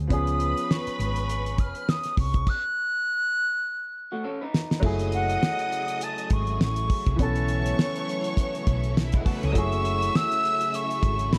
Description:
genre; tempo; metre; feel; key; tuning
lush 1970s-style soul; 102 BPM; 4/4; swing 58% on 16ths; F# dorian; A4 = 440 Hz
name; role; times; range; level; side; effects
clear grand piano; accompaniment; 0.0-11.4 s; E3 to A4; -35 LUFS; equal; none
hollow-body short-scale fingered electric bass; bass; 0.0-11.4 s; F#1 to C#2; -30 LUFS; equal; none
silver concert flute; melody; 0.1-11.4 s; F#5 to F#6; -30 LUFS; equal; none
clear symphonic violin section; second line; 0.1-11.4 s; E4 to E6; -37 LUFS; equal; slapback echo
damped 70s drum kit; drums; 0.1-11.4 s; crash cymbal, hi-hat, kick drum, snare drum; -27 LUFS; equal; none
electric guitar through a small old amp; riff; 4.1-4.8, 9.1-9.7 s; G#3 to B4; -36 LUFS; equal; subtle chorus
string machine, violins; sustained chords; 4.8-11.4 s; C#3 to G#4; -38 LUFS; equal; ensemble chorus
room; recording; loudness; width
small room ambience; none; -26 LUFS; mono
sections
0.0-4.8 A section; 4.8-11.4 B section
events
drum fill 3.6-4.8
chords
0.1 C#7; 2.5 N.C.; 4.8 F#m9; 7.2 B9sus4; 9.5 F#m9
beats
| 0.11 0.70 1.29 1.88 | 2.47 3.06 3.65 4.24 | 4.83 5.42 6.01 6.60 | 7.19 7.78 8.37 8.96 | 9.55 10.14 10.73 11.32

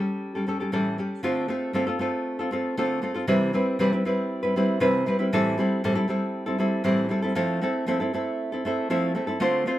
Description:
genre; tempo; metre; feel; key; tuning
pop; 118 BPM; 4/4; straight; unclear; A4 = 440 Hz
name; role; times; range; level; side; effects
nylon-string guitar; solo; 0.0-9.8 s; A2 to C5; -23 LUFS; equal; none
room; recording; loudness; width
moderate studio reverb, RT60 0.5 s; band playing live in one room; -23 LUFS; side -14 dB against mid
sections
0.0-1.2 A section; 1.2-9.8 B section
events
none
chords
0.0 A7; 1.2 Dm7; 3.3 Cmaj7; 5.3 Am7; 7.4 Fmaj7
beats
0.21 0.72 | 1.24 1.75 2.26 2.77 | 3.28 3.79 4.30 4.81 | 5.32 5.83 6.34 6.85 | 7.36 7.87 8.38 8.89 | 9.40

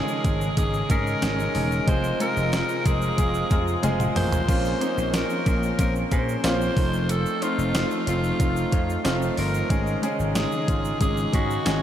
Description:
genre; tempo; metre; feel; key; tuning
1980s-style pop; 92 BPM; 4/4; straight; unclear; A4 = 440 Hz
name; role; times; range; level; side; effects
raspy alto saxophone; melody; 0.0-11.8 s; F4 to C5; -28 LUFS; equal; tape echo
warm baby grand piano; accompaniment; 0.0-11.8 s; Ab3 to Bb4; -27 LUFS; left 1 dB; none
chorused pulse-width pad; sustained chords; 0.0-11.8 s; C3 to F4; -32 LUFS; equal; none
tube shaker; percussion; 0.1-11.8 s; none; -44 LUFS; right 9 dB; none
vintage slap bass; bass; 0.2-11.8 s; E1 to Bb2; -27 LUFS; equal; none
clean 12-bit digital drum machine; drums; 0.2-11.8 s; crash cymbal, hi-hat, kick drum, snare drum, tambourine, toms; -26 LUFS; equal; overdrive
room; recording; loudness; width
moderate huge ambient reverb, RT60 8.5 s; dreamy mix soaked in reverb; -21 LUFS; side -10 dB against mid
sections
0.0-11.8 A section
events
drum fill 3.8-4.5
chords
0.0 Absus4; 1.9 Fm; 4.5 Bbmadd9; 6.8 F7; 9.7 Absus4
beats
0.57 1.23 | 1.88 2.53 3.18 3.83 | 4.49 5.14 5.79 6.44 | 7.09 7.75 8.40 9.05 | 9.70 10.36 11.01 11.66

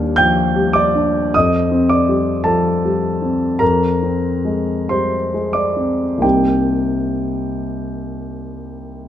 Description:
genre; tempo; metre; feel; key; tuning
classical, impressionist solo piano; 40-54 BPM; 4/4; rubato; unclear; A4 = 440 Hz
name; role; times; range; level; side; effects
warm concert grand piano; solo; 0.0-9.1 s; C2 to G6; -15 LUFS; equal; none
room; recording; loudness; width
light reverb; close, detailed microphones; -15 LUFS; side -11 dB against mid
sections
0.0-9.1 A section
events
none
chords
0.0 Ebmaj9; 1.3 Fadd9; 3.6 Fm6; 6.2 Cm7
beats
0.18 | 1.34 2.46 3.61 4.90 | 6.24 7.70

